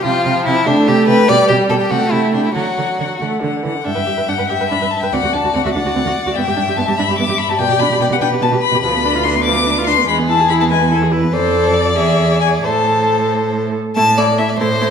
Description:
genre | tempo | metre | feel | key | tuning
quick classical-period movement for string quartet | 96 BPM (dotted quarters) | 6/8 | rubato | G major, A minor from 8.8 s | A4 = 439 Hz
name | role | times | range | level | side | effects
rich violin | melody | 0.0-14.9 s | E4 to D6 | -18 LUFS | left 7 dB | none
clear violin | second line | 0.0-14.9 s | D4 to A5 | -18 LUFS | left 2 dB | none
rich viola | accompaniment | 0.0-14.9 s | D3 to B4 | -19 LUFS | right 3 dB | none
rich cello | bass | 0.0-14.9 s | D2 to D3 | -20 LUFS | right 4 dB | none
room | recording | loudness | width
wet recital hall reverb, RT60 1.6 s | none | -13 LUFS | side -7 dB against mid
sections
0.0-3.9 A section; 3.9-14.0 B section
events
none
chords
0.0 C5; 1.3 G/B; 1.9 Am7/C; 2.5 D; 3.9 G; 5.1 D; 6.4 G; 7.6 G/B; 8.8 Bdim/D; 10.1 E; 11.3 F; 12.0 E7; 12.6 Am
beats
| 0.04 0.66 | 1.28 1.90 | 2.55 3.21 | 3.86 4.50 | 5.12 5.74 | 6.36 6.98 | 7.59 8.21 | 8.83 9.45 | 10.08 10.70 | 11.33 11.97 | 12.64 13.31 | 13.97 14.60

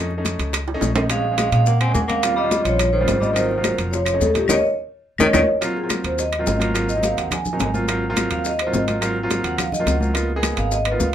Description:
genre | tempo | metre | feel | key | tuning
Afro-Cuban jazz | 212 BPM | 4/4 | straight | Ab mixolydian | A4 = 440 Hz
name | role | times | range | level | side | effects
clear concert grand piano | accompaniment | 0.0-11.1 s | Gb3 to Ab4 | -25 LUFS | equal | none
upright bass | bass | 0.0-11.1 s | F1 to Bb2 | -24 LUFS | equal | none
bongos | percussion | 0.1-11.1 s | none | -31 LUFS | left 5 dB | none
congas | percussion | 0.1-11.1 s | none | -28 LUFS | left 1 dB | none
maracas | percussion | 0.3-11.1 s | none | -31 LUFS | left 5 dB | none
timbales | percussion | 0.3-11.0 s | none | -27 LUFS | right 5 dB | none
claves | percussion | 0.5-11.0 s | none | -31 LUFS | left 4 dB | none
vibraphone with medium mallets | melody | 1.1-11.1 s | G4 to Ab5 | -22 LUFS | right 1 dB | none
warm tenor saxophone | second line | 1.1-5.4 s | Bb2 to C4 | -25 LUFS | left 3 dB | none
room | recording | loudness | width
moderate club reverb, RT60 0.5 s | minimal, uncompressed stereo recording | -18 LUFS | side -10 dB against mid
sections
0.0-5.6 A section; 5.6-11.1 B section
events
drum fill 0.7-1.1, 5.1-5.6; band accent 4.5-5.6; vibraphone solo 5.6-11.1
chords
0.0 Faug7; 1.1 Bbm7; 2.2 Eb13; 3.4 Ab13; 3.9 Faug7; 4.5 Eb5; 5.6 Ab13; 10.1 Db13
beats
0.25 0.54 0.82 | 1.10 1.38 1.67 1.95 | 2.23 2.51 2.79 3.08 | 3.36 3.64 3.92 4.21 | 4.49 4.77 5.06 5.34 | 5.62 5.91 6.19 6.47 | 6.75 7.04 7.32 7.60 | 7.88 8.17 8.45 8.73 | 9.02 9.30 9.58 9.87 | 10.15 10.43 10.71 11.00

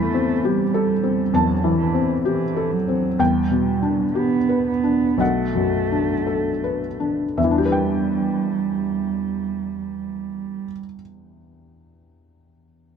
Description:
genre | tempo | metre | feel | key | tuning
neoclassical piano and strings | 54-68 BPM | 4/4 | rubato | E minor | A4 = 441 Hz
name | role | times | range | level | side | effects
muted cello | second line | 0.0-10.6 s | E3 to B3 | -23 LUFS | right 8 dB | none
felt-muted upright piano | accompaniment | 0.0-13.0 s | B1 to B5 | -20 LUFS | left 3 dB | none
room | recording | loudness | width
little or no reverb | close, detailed microphones | -19 LUFS | side -7 dB against mid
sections
0.0-7.4 A section; 7.4-11.7 B section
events
slowing down 0.0-7.4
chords
0.0 Am7/E; 3.2 Em7; 5.2 Bm7; 7.4 Em7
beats
0.44 1.34 2.25 | 3.19 4.16 5.19 6.27 | 7.38 8.46 9.55 10.63

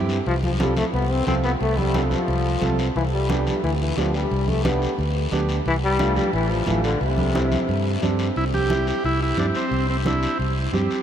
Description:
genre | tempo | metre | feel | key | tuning
latin, cumbia | 178 BPM | 4/4 | straight | C major | A4 = 440 Hz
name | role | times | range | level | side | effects
clear upright piano | accompaniment | 0.0-11.0 s | G3 to A4 | -28 LUFS | right 4 dB | none
fingered electric bass | bass | 0.0-10.9 s | A1 to G2 | -24 LUFS | equal | none
guiro | percussion | 0.1-11.0 s | none | -34 LUFS | left 5 dB | none
clear trombone | second line | 0.3-8.0 s | C3 to C4 | -25 LUFS | left 2 dB | none
congas | percussion | 0.3-10.9 s | none | -30 LUFS | right 1 dB | none
combo organ | melody | 8.4-10.4 s | C4 to G4 | -24 LUFS | right 1 dB | none
room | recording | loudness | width
wet huge ambient reverb, RT60 8.2 s | in a vast, echoing space | -19 LUFS | side -9 dB against mid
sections
0.0-8.4 A section; 8.4-11.0 B section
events
trombone solo 0.0-8.4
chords
0.3 F/C; 3.0 G/C; 5.7 Dm/C; 7.0 C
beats
| 0.26 0.60 0.94 1.27 | 1.61 1.95 2.28 2.62 | 2.96 3.30 3.63 3.97 | 4.31 4.64 4.98 5.32 | 5.66 6.00 6.33 6.67 | 7.01 7.35 7.68 8.02 | 8.36 8.70 9.04 9.38 | 9.71 10.05 10.39 10.73

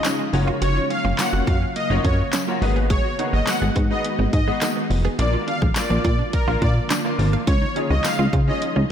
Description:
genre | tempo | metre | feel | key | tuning
dance-pop | 105 BPM | 4/4 | straight | F# major | A4 = 440 Hz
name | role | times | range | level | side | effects
clear concert grand piano | accompaniment | 0.0-8.8 s | A#3 to E#5 | -28 LUFS | left 3 dB | ensemble chorus, sidechain pumping
ethereal airy pad | sustained chords | 0.0-8.9 s | C#3 to E#5 | -28 LUFS | left 1 dB | ensemble chorus, built-in reverb, sidechain pumping
hollow square pluck | arpeggios | 0.0-8.7 s | E#3 to E#5 | -33 LUFS | right 8 dB | chorus, sidechain pumping, analog delay
direct-recorded clean electric guitar | riff | 0.0-8.9 s | G#3 to F#4 | -31 LUFS | right 3 dB | none
pop drum kit | drums | 0.0-8.8 s | handclaps, hi-hat, kick drum, snare drum | -24 LUFS | equal | none
tambourine | percussion | 0.0-8.2 s | none | -32 LUFS | left 11 dB | none
plucky analog bass | bass | 0.3-8.8 s | E#1 to C#3 | -21 LUFS | equal | sidechain pumping
soft supersaw | melody | 0.6-8.6 s | A#4 to F#5 | -26 LUFS | equal | sidechain pumping, analog delay
room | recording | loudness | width
light reverb, digital ambience | none | -18 LUFS | side -9 dB against mid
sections
0.0-8.9 A section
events
none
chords
0.3 F#maj7; 2.6 G#m7; 5.2 A#; 7.5 C#add9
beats
0.04 | 0.62 1.19 1.76 2.33 | 2.90 3.47 4.04 4.62 | 5.19 5.76 6.33 6.90 | 7.47 8.04 8.62

